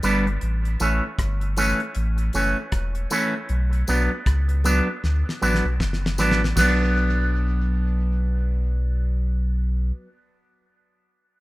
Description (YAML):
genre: roots reggae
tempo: 78 BPM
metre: 4/4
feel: swing 59% on 16ths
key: B minor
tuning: A4 = 440 Hz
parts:
  - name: electric guitar with an envelope filter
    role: accompaniment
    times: 0.0-10.1 s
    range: E3 to D4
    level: -24 LUFS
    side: right 1 dB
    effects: spring reverb, dub echo
  - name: warm sub bass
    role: bass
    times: 0.0-9.9 s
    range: E1 to D2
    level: -22 LUFS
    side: equal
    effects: none
  - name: damped 70s drum kit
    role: drums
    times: 0.0-6.8 s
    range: crash cymbal, hi-hat, kick drum, rim click, snare drum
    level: -26 LUFS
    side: left 1 dB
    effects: tape echo
  - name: tambourine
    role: percussion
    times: 0.0-6.9 s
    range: none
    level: -32 LUFS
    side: left 2 dB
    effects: none
room: light reverb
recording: rough home demo mix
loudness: -20 LUFS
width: side -19 dB against mid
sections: 0.0-6.6 A section; 6.6-9.6 B section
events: drum fill 5.0-6.6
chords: 0.4 A; 3.5 Bm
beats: | 0.42 1.19 1.96 2.72 | 3.49 4.26 5.03 5.80 | 6.57 7.34 8.11 8.88